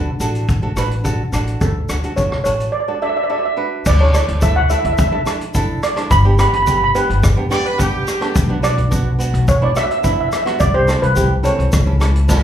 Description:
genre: calypso.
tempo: 107 BPM.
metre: 4/4.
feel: straight.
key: D major.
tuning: A4 = 441 Hz.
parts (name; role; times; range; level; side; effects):
flamenco guitar; accompaniment; 0.0-12.4 s; B3 to B4; -23 LUFS; right 2 dB; slapback echo.
upright bass; bass; 0.0-12.4 s; G1 to D2; -17 LUFS; equal; none.
street-band drum kit; drums; 0.2-12.4 s; crash cymbal, hi-hat, kick drum, rim click, snare drum; -19 LUFS; equal; none.
egg shaker; percussion; 0.2-12.4 s; none; -32 LUFS; left 3 dB; none.
steel pan; melody; 1.6-12.4 s; A4 to B5; -18 LUFS; right 1 dB; slapback echo.
brilliant horn section; second line; 7.5-8.5 s; G4 to D5; -21 LUFS; right 1 dB; slapback echo.
room: light reverb.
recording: live gig heard through the venue's PA, club reverb.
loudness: -14 LUFS.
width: side -10 dB against mid.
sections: 0.0-3.9 A section; 3.9-12.4 B section.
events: none.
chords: 0.0 D; 3.9 Dsus2; 6.1 G; 8.4 Bm; 10.6 C; 11.7 A/C#.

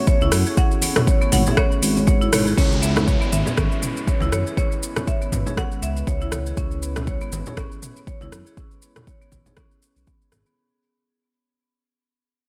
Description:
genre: afro house.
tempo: 120 BPM.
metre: 4/4.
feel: swing 56% on 16ths.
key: C# minor.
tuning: A4 = 440 Hz.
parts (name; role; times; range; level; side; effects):
marimba with medium hard mallets; melody; 0.0-6.6 s; C#5 to F#5; -34 LUFS; equal; dub echo.
warm analog pad; sustained chords; 0.0-10.5 s; G#3 to C#5; -36 LUFS; equal; chorus, sidechain pumping.
marimba with hard mallets; arpeggios; 0.1-10.6 s; B3 to C#5; -31 LUFS; equal; sidechain pumping, low-pass filter, dub echo.
deep house drum kit; drums; 0.1-10.6 s; crash cymbal, hi-hat, rim click, shaker, toms; -27 LUFS; equal; overdrive, small room ambience.
electronic kick drum; drums; 0.1-10.2 s; none; -23 LUFS; equal; small room ambience.
congas; percussion; 0.1-10.4 s; none; -31 LUFS; equal; none.
smooth synth bass; bass; 0.2-10.4 s; G#1 to F#2; -26 LUFS; equal; tube saturation, sidechain pumping.
downlifter; sound effects; 2.6-6.6 s; none; -35 LUFS; equal; none.
room: light reverb.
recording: echo-heavy mix.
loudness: -21 LUFS.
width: mono.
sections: 0.0-2.6 A section; 2.6-10.6 B section.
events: drop 0.0-2.6; band accent 2.3; fade-out 2.6-10.6; filter sweep on marimba 2.6-10.6.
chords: 0.0 F#m; 2.6 C#m7.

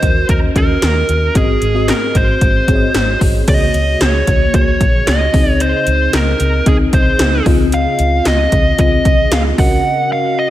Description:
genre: 1980s-style pop.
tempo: 113 BPM.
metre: 4/4.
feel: straight.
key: unclear.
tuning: A4 = 440 Hz.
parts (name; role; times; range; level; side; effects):
fuzz lead guitar; melody; 0.0-10.5 s; Ab4 to Gb5; -16 LUFS; right 1 dB; distortion, slapback echo.
FM electric piano with soft pad layer; accompaniment; 0.0-10.5 s; Ab2 to Eb5; -18 LUFS; left 1 dB; chorus.
vintage muted fingered electric bass; bass; 0.0-9.8 s; Ab1 to Eb2; -17 LUFS; equal; none.
80s electronic pad drums; drums; 0.0-9.7 s; crash cymbal, hi-hat, kick drum, snare drum; -15 LUFS; equal; none.
room: moderate scoring stage reverb, RT60 1.9 s, digital ambience.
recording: big arena sound.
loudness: -11 LUFS.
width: side -13 dB against mid.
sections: 0.0-3.5 A section; 3.5-10.5 B section.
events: break 9.8-10.5.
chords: 0.0 Ebm7; 1.4 Ab7; 3.5 Gbadd9/Db; 5.3 Ab/Db; 7.5 Fm7/Db; 9.6 Ebm7/Db.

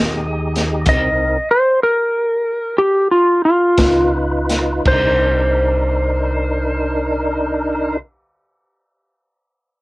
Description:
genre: slow blues.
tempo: 54-67 BPM (dotted quarters).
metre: 12/8.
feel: straight.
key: C minor.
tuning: A4 = 440 Hz.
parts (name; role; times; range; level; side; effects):
clean lap steel guitar; melody; 0.0-8.0 s; F4 to Eb5; -16 LUFS; equal; cassette tape.
tonewheel organ; sustained chords; 0.0-8.0 s; C4 to Cb5; -20 LUFS; equal; slow rotary speaker, overdrive, chorus vibrato, cassette tape.
upright bass; bass; 0.0-8.0 s; C2 to Eb2; -21 LUFS; equal; none.
crunchy breakbeat drum kit; drums; 0.6-5.0 s; crash cymbal, hi-hat, kick drum, snare drum; -20 LUFS; equal; cassette tape.
room: light reverb.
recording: home recording on cassette.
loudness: -14 LUFS.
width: side -21 dB against mid.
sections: 0.0-4.8 A section; 4.8-9.3 B section.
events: slowing down 0.0-4.8.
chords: 0.0 Fm7 (rootless); 0.9 Cm7; 3.8 Db7; 4.8 Cm7.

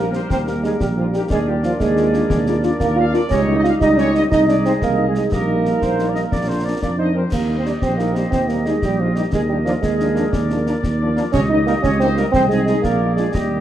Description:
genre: military-style march for wind band.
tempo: 120 BPM (dotted quarters).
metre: 6/8.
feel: straight.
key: Eb major.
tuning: A4 = 440 Hz.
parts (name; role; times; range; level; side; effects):
clear trumpet section; melody; 0.0-13.6 s; F4 to F5; -31 LUFS; equal; none.
warm euphonium; second line; 0.0-13.6 s; F3 to F4; -20 LUFS; right 3 dB; none.
warm woodwind section; second line; 0.0-13.6 s; G4 to Eb5; -26 LUFS; left 2 dB; none.
mellow French horn section; accompaniment; 0.0-13.6 s; F3 to G4; -26 LUFS; left 4 dB; none.
mellow trombone section; sustained chords; 0.0-13.2 s; F3 to Eb4; -27 LUFS; right 1 dB; none.
dark tuba; bass; 0.0-13.6 s; Bb1 to F2; -20 LUFS; right 2 dB; none.
concert snare drum, concert bass drum and clash cymbals; drums; 0.1-13.5 s; none; -26 LUFS; left 1 dB; none.
room: wet large studio reverb, RT60 1.1 s.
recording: dark, warm production.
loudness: -15 LUFS.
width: side -11 dB against mid.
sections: 0.0-13.6 A section.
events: none.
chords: 0.0 Eb; 1.3 Bb7/Eb; 3.3 Eb7/Db; 4.3 Ab/C; 5.3 Eb/Bb; 6.3 Bb; 7.3 Eb; 9.3 Bb7/Eb; 11.3 Eb7/Db; 12.3 Ab/C; 12.8 Bb7.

